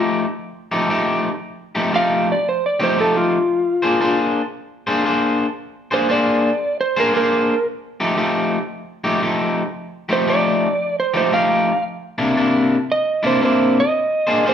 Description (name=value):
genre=blues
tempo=115 BPM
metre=4/4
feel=swing 66% on 8ths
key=F mixolydian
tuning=A4 = 439 Hz
part: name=electric guitar at the edge of break-up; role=riff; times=0.0-14.5 s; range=C3 to C5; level=-18 LUFS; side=left 1 dB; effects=none
part: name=electric slide guitar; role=melody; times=2.0-14.5 s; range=F4 to F5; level=-18 LUFS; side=right 2 dB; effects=none
room=moderate large studio reverb, RT60 1.2 s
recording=band playing live in one room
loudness=-16 LUFS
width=side -8 dB against mid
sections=0.0-14.5 A section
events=electric slide guitar solo 0.0-14.5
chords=0.0 F9; 3.5 Bb9; 7.7 F9; 11.8 C9; 13.9 Bb9